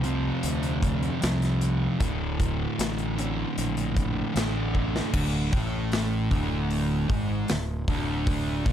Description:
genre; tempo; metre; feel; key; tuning
stoner and doom metal; 77 BPM; 4/4; straight; D minor; A4 = 440 Hz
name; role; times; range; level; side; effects
thick fuzz guitar; riff; 0.0-8.7 s; D2 to Bb3; -27 LUFS; equal; distortion
fuzz fingered electric bass; bass; 0.0-8.7 s; D1 to D2; -30 LUFS; equal; overdrive
big rock drum kit; drums; 0.0-8.7 s; crash cymbal, hi-hat, kick drum, snare drum; -29 LUFS; equal; none
room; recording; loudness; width
little or no reverb; dark, warm production; -24 LUFS; side -10 dB against mid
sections
0.0-5.1 A section; 5.1-8.7 B section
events
drum fill 4.7-5.1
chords
0.0 F5; 2.0 D5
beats
0.43 1.22 | 2.00 2.79 3.57 4.36 | 5.14 5.92 6.70 7.49 | 8.27

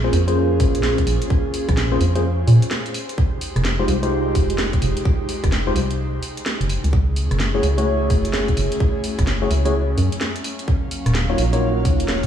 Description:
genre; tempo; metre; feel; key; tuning
UK garage, two-step garage; 128 BPM; 4/4; swing 63% on 16ths; Bb minor; A4 = 438 Hz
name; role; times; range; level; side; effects
airy breathy pad; sustained chords; 0.0-12.3 s; Gb3 to F5; -29 LUFS; right 1 dB; chorus, sidechain pumping
mellow tine electric piano; stabs; 0.0-12.3 s; Ab3 to Db5; -23 LUFS; left 1 dB; medium stereo tremolo, dub echo
organ-like FM bass; bass; 0.0-12.3 s; Eb1 to Bb2; -19 LUFS; equal; none
garage drum kit; drums; 0.1-12.3 s; hi-hat, rim click, snare drum; -27 LUFS; equal; none
electronic kick drum; drums; 0.6-12.3 s; none; -18 LUFS; equal; none
room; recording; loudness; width
light reverb; played on a big sound system in a bare room, large studio reverb; -17 LUFS; side -9 dB against mid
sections
0.0-12.3 A section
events
none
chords
0.0 Bbm9; 2.9 Fm9; 6.7 Gbm9; 10.4 Ebm9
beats
0.37 0.83 | 1.30 1.77 2.24 2.71 | 3.18 3.65 4.12 4.58 | 5.05 5.52 5.99 6.46 | 6.93 7.40 7.87 8.34 | 8.80 9.27 9.74 10.21 | 10.68 11.15 11.62 12.09

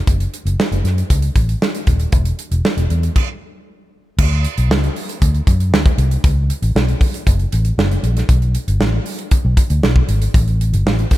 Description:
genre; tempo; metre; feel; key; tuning
polished 1980s jazz-funk pop; 117 BPM; 4/4; straight; D major; A4 = 440 Hz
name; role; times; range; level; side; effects
vintage muted fingered electric bass; bass; 0.1-11.0 s; Eb1 to F#2; -16 LUFS; equal; none
modern studio drum kit; drums; 0.1-11.2 s; crash cymbal, hi-hat, kick drum, snare drum; -16 LUFS; equal; none
room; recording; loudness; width
little or no reverb; none; -14 LUFS; side -16 dB against mid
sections
0.0-4.2 A section; 4.2-11.2 B section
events
stop 3.2-4.2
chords
none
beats
| 0.07 0.58 1.10 1.61 | 2.13 2.64 3.15 3.67 | 4.18 4.70 5.21 5.72 | 6.24 6.75 7.26 7.78 | 8.29 8.81 9.32 9.83 | 10.35 10.86

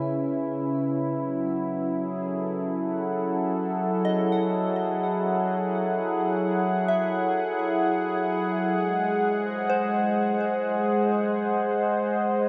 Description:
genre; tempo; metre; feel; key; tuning
ambient; 64 BPM; 4/4; straight; unclear; A4 = 441 Hz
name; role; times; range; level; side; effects
warm analog pad; sustained chords; 0.0-12.5 s; C#3 to F#5; -26 LUFS; equal; chorus
soft synth bell; arpeggios; 0.0-12.5 s; B#4 to G#5; -36 LUFS; equal; chorus, phaser, delay
room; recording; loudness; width
wet huge ambient reverb, RT60 8.6 s; dreamy mix soaked in reverb; -26 LUFS; mono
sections
0.0-12.5 A section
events
none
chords
0.0 C#m7; 1.2 F#m7; 8.7 G#7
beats
0.20 | 1.16 2.12 3.08 4.03 | 4.97 5.92 6.87 7.80 | 8.74 9.69 10.63 11.57

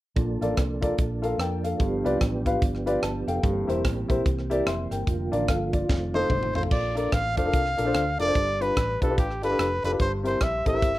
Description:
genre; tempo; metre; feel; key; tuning
uptempo gospel; 146 BPM; 4/4; swing 62% on 8ths; Bb major; A4 = 440 Hz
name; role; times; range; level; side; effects
warm upright piano; accompaniment; 0.2-10.9 s; G2 to C6; -27 LUFS; left 2 dB; plate reverb
mellow tonewheel organ; sustained chords; 0.2-6.7 s; D3 to A4; -31 LUFS; right 2 dB; fast rotary speaker, chorus vibrato, plate reverb
hollow-body short-scale fingered electric bass; bass; 0.2-11.0 s; E1 to F2; -31 LUFS; equal; none
tight funk drum kit; drums; 0.2-11.0 s; crash cymbal, hi-hat, kick drum, rim click, snare drum, toms; -27 LUFS; equal; none
clear trumpet; melody; 6.1-11.0 s; G4 to F5; -26 LUFS; equal; plate reverb
room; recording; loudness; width
moderate small room reverb, RT60 0.6 s; rough home demo mix; -23 LUFS; side -16 dB against mid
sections
0.2-6.7 A section; 6.7-11.0 B section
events
upright piano fill 2.8-3.4; drum fill 5.9-6.7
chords
0.2 Bbmaj7; 1.8 G7; 3.4 C7; 5.1 Bb/F; 5.9 F7; 6.7 Bbmaj7; 8.4 G7; 10.0 C7/G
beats
| 0.16 0.57 0.98 1.39 | 1.80 2.21 2.62 3.03 | 3.44 3.85 4.25 4.66 | 5.07 5.48 5.89 6.30 | 6.71 7.12 7.54 7.95 | 8.36 8.77 9.18 9.59 | 10.00 10.41 10.82

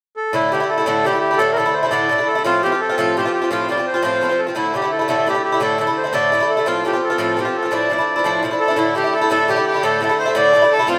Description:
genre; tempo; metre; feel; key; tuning
celtic folk, Celtic jig; 114 BPM (dotted quarters); 6/8; straight; D minor; A4 = 439 Hz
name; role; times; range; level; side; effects
accordion; melody; 0.2-11.0 s; E4 to D5; -20 LUFS; equal; none
Irish bouzouki; accompaniment; 0.3-11.0 s; A2 to F4; -21 LUFS; equal; none
clear fiddle; second line; 8.6-11.0 s; E4 to D5; -24 LUFS; equal; none
room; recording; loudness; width
wet lush hall reverb, RT60 2.8 s; rough home demo mix; -18 LUFS; mono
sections
0.3-8.8 A section; 8.8-11.0 A section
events
none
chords
0.3 Dsus2; 2.4 F; 4.6 Dsus2; 6.7 F; 7.7 Dmadd9; 8.8 Dsus2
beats
| 0.34 0.86 | 1.39 1.92 | 2.45 2.98 | 3.50 4.03 | 4.56 5.09 | 5.61 6.14 | 6.67 7.20 | 7.72 8.25 | 8.78 9.30 | 9.83 10.36 | 10.88

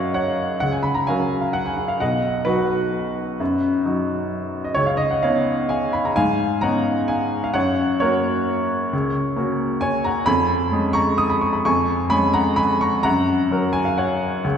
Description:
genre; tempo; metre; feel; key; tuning
classical, piano waltz; 130 BPM; 3/4; rubato; F# major; A4 = 440 Hz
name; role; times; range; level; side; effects
clear upright piano; solo; 0.0-14.6 s; B1 to D#6; -18 LUFS; equal; none
room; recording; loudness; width
wet concert hall reverb, RT60 2.1 s; heard from further back in the room; -18 LUFS; side -8 dB against mid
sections
0.0-14.6 A section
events
none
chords
0.0 F#; 2.0 B; 4.8 C#9; 7.5 F#; 10.3 C#7/E#; 13.0 F#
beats
0.14 | 0.61 1.06 1.54 | 2.00 2.46 2.94 | 3.40 3.85 4.32 | 4.77 5.22 5.69 | 6.15 6.61 7.08 | 7.54 8.00 8.46 | 8.93 9.38 9.83 | 10.28 10.73 11.20 | 11.66 12.11 12.58 | 13.04 13.50 13.98 | 14.44

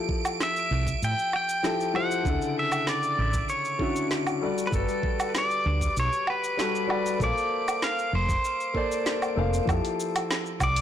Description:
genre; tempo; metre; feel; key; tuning
sunset chillout; 97 BPM; 4/4; straight; unclear; A4 = 440 Hz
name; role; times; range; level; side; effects
warm concert grand piano; accompaniment; 0.0-10.8 s; C#3 to F5; -30 LUFS; moving between left 4 dB and right 3 dB; auto-pan, ping-pong delay
wind-like tuned noise texture; texture; 0.0-9.7 s; D7; -39 LUFS; right 5 dB; built-in reverb
electronic kick drum; drums; 0.1-10.7 s; none; -31 LUFS; right 1 dB; none
smooth R&B drum kit; drums; 0.3-10.8 s; hi-hat, shaker, snare drum, woodblock; -31 LUFS; right 1 dB; none
pedal steel guitar; melody; 0.4-10.8 s; A4 to G5; -28 LUFS; equal; vintage 12-bit sampler grit, digital delay
woody fretless electric bass; bass; 0.7-10.8 s; F1 to A2; -27 LUFS; right 1 dB; transformer saturation, lush chorus
room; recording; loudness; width
light reverb, digital ambience; blown-out, overdriven recording, overdrive; -24 LUFS; side -10 dB against mid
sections
0.0-9.7 A section; 9.7-10.8 B section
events
none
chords
0.0 Fmaj9; 2.3 Dmaj9; 4.4 Gmaj9; 7.2 Bbmaj9; 9.7 Fmaj9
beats
0.40 1.02 1.64 | 2.26 2.88 3.49 4.11 | 4.73 5.35 5.97 6.59 | 7.21 7.82 8.44 9.06 | 9.68 10.30

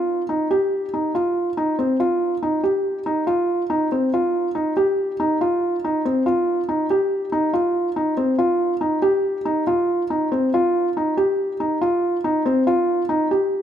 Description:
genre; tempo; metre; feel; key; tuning
contemporary instrumental, contemporary; 141 BPM; 5/4; straight; C minor; A4 = 440 Hz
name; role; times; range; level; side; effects
felt-muted upright piano; solo; 0.0-13.6 s; C4 to G4; -18 LUFS; equal; none
room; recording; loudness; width
moderate scoring stage reverb, RT60 1.9 s; minimal, uncompressed stereo recording; -18 LUFS; side -9 dB against mid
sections
0.0-4.1 A section; 4.1-13.6 B section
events
none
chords
none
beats
0.30 0.72 1.15 1.58 | 2.00 2.43 2.85 3.28 3.70 | 4.13 4.55 4.98 5.40 5.83 | 6.26 6.68 7.11 7.54 7.96 | 8.39 8.82 9.24 9.67 10.10 | 10.53 10.96 11.38 11.81 12.24 | 12.67 13.10 13.53

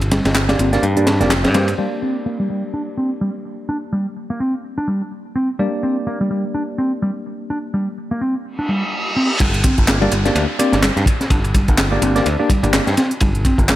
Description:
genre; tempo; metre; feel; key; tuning
breakbeat, breaks; 126 BPM; 4/4; swing 58% on 16ths; G minor; A4 = 440 Hz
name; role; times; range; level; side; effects
modern bright picked electric bass; bass; 0.0-1.7, 9.4-13.8 s; F1 to G2; -19 LUFS; equal; none
crunchy breakbeat drum kit; drums; 0.0-1.8, 9.4-13.8 s; crash cymbal, kick drum, ride cymbal, snare drum; -18 LUFS; equal; none
garage drum kit; drums; 0.0-1.8, 9.4-13.8 s; handclaps, hi-hat; -24 LUFS; equal; none
picked electric bass; riff; 0.1-13.8 s; G3 to D4; -21 LUFS; equal; low-pass filter, digital delay
tine electric piano; stabs; 0.5-12.8 s; Bb3 to D5; -24 LUFS; left 1 dB; medium stereo tremolo, vintage 12-bit sampler grit, digital delay
reverse cymbal and downlifter; sound effects; 8.6-13.2 s; none; -25 LUFS; equal; none
room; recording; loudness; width
light reverb, small room ambience; none; -16 LUFS; side -14 dB against mid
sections
0.0-1.8 A section; 1.8-9.4 B section; 9.4-13.8 C section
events
kick drops out 0.8-1.8; filter sweep on picked electric bass 1.8-9.4; reverse cymbal 8.6-9.4; drop 9.4-13.8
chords
0.0 Gm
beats
0.35 0.83 1.31 | 1.78 2.26 2.74 3.21 | 3.69 4.17 4.64 5.12 | 5.59 6.07 6.55 7.02 | 7.50 7.97 8.45 8.93 | 9.40 9.88 10.36 10.83 | 11.31 11.78 12.26 12.74 | 13.21 13.69

